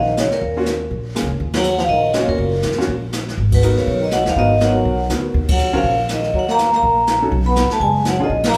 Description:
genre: jazz, small-group swing and bop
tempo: 244 BPM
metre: 4/4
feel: swing 58% on 8ths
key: Eb minor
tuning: A4 = 440 Hz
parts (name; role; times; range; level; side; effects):
- vibraphone with medium hard mallets; melody; 0.0-8.6 s; Bb4 to B5; -21 LUFS; equal; none
- trombone with bucket mute; second line; 0.0-8.6 s; Bb2 to B3; -26 LUFS; equal; none
- upright bass; bass; 0.0-8.6 s; Gb1 to Fb2; -24 LUFS; equal; none
- jazz brush drum kit; drums; 0.2-8.6 s; brushed snare drum, hi-hat, kick drum, ride cymbal, snare drum; -26 LUFS; equal; none
- clear concert grand piano; accompaniment; 0.6-8.3 s; Bb3 to Bb4; -26 LUFS; equal; none
room: wet recital hall reverb, RT60 1.4 s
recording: recorded in a church or concert hall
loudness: -17 LUFS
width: mono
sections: 0.0-8.6 A section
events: band accent 1.5, 3.5, 5.5, 8.4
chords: 0.0 Ebm7; 3.4 Abm7; 5.3 Ebm7; 7.3 B5

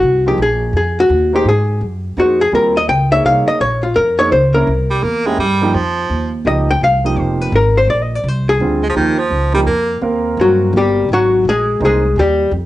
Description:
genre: jazz, small-group swing and bop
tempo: 168 BPM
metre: 3/4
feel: swing 64% on 8ths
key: Eb mixolydian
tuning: A4 = 440 Hz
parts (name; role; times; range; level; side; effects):
- archtop guitar, miked and amplified; melody; 0.0-12.5 s; Gb3 to G5; -13 LUFS; left 2 dB; cassette tape, plate reverb
- upright bass; bass; 0.0-12.7 s; F1 to Ab2; -18 LUFS; equal; none
- warm grand piano; accompaniment; 0.3-12.0 s; D3 to F5; -20 LUFS; right 3 dB; cassette tape, plate reverb
- edgy baritone saxophone; second line; 4.9-6.4, 8.8-10.0 s; Eb3 to Bb3; -17 LUFS; right 2 dB; cassette tape, plate reverb
room: wet studio ambience, RT60 0.5 s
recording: home recording on cassette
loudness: -12 LUFS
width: side -15 dB against mid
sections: 0.0-10.0 A section; 10.0-12.7 B section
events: hollow-body jazz guitar solo 10.0-12.7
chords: 0.4 Bb5; 1.1 Eb; 1.5 Ab9; 2.5 Eb7sus2; 4.7 C7; 5.7 Fm7; 7.9 Bb9; 9.0 Eb9; 10.0 Ebadd9; 11.1 Ab9

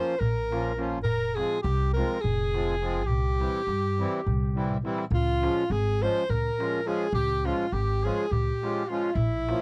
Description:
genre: balkan folk, Balkan wedding band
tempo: 207 BPM (eighths)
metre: 7/8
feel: straight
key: unclear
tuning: A4 = 439 Hz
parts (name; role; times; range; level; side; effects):
- bright alto saxophone; melody; 0.0-9.6 s; E4 to C5; -31 LUFS; equal; none
- clear trumpet; second line; 0.0-9.6 s; E4 to C5; -41 LUFS; equal; none
- accordion; accompaniment; 0.0-9.6 s; E3 to F4; -32 LUFS; equal; none
- upright bass; bass; 0.2-9.5 s; F1 to G2; -31 LUFS; equal; none
- darbuka; percussion; 0.2-9.6 s; none; -34 LUFS; equal; none
room: little or no reverb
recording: dry, close 1970s-style studio recording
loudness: -27 LUFS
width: mono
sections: 0.0-5.1 A section; 5.1-9.6 B section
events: drum fill 4.7-5.1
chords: 0.0 Bbm; 1.1 Fm; 3.1 C; 5.1 Db

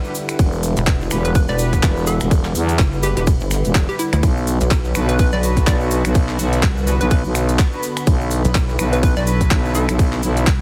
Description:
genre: bass house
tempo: 125 BPM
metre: 4/4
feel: swing 57% on 16ths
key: E minor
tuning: A4 = 440 Hz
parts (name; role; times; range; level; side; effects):
- sweeping resonant pad; sustained chords; 0.0-10.6 s; D3 to F#4; -31 LUFS; equal; none
- warm horn section; stabs; 0.0-9.9 s; B3 to B4; -32 LUFS; equal; sidechain pumping, dub echo
- cabasa; percussion; 0.0-10.6 s; none; -36 LUFS; equal; none
- warbly tape-like pad; texture; 0.0-10.6 s; E4 to B5; -33 LUFS; equal; chorus, built-in reverb, sidechain pumping
- garage drum kit; drums; 0.2-10.6 s; finger snaps, handclaps, hi-hat, ride cymbal; -28 LUFS; equal; none
- growling FM bass; bass; 0.4-10.5 s; E1 to E2; -21 LUFS; equal; overdrive, sidechain pumping
- electronic kick drum; drums; 0.4-10.6 s; none; -19 LUFS; equal; none
- pulsing pluck wobble bass; bass; 0.8-10.6 s; E1 to D2; -22 LUFS; equal; chorus, tube saturation, sidechain pumping
- hollow square pluck; melody; 1.2-9.9 s; E4 to D5; -29 LUFS; equal; chorus, dub echo
room: little or no reverb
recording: heavily compressed radio sound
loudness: -17 LUFS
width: mono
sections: 0.0-10.6 A section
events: none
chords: 0.0 Em7; 4.2 Bm

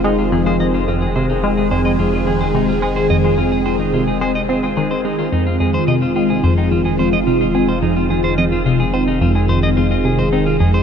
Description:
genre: ambient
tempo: 108 BPM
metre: 4/4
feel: straight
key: F minor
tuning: A4 = 435 Hz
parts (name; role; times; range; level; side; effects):
- phased analog pad; sustained chords; 0.0-10.8 s; Eb3 to Ab4; -17 LUFS; equal; phaser, chorus
- clean electric guitar; arpeggios; 0.0-10.8 s; Eb4 to Eb5; -23 LUFS; equal; auto-pan, ping-pong delay
- tight sequenced synth; riff; 0.0-10.8 s; F2 to C4; -18 LUFS; left 1 dB; chorus, phaser, cassette tape, ping-pong delay
- warm sub bass; bass; 0.0-10.8 s; F1; -25 LUFS; equal; none
room: wet huge ambient reverb, RT60 7.2 s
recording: none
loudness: -14 LUFS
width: side -7 dB against mid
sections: 0.0-10.8 A section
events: none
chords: 0.0 Fm7

